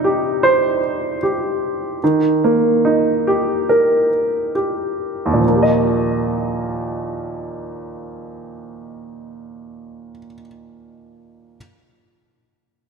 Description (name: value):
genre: pop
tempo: 66-77 BPM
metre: 4/4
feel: straight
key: Eb major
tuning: A4 = 440 Hz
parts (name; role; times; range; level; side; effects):
- clear baby grand piano; accompaniment; 0.0-11.6 s; Eb2 to Eb5; -17 LUFS; right 1 dB; none
room: wet plate reverb, RT60 2.9 s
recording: dreamy mix soaked in reverb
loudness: -15 LUFS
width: side -5 dB against mid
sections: 0.0-5.4 A section; 5.4-9.1 B section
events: slowing down 0.0-5.4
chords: 0.0 Cm; 2.0 Eb; 5.4 Ebadd9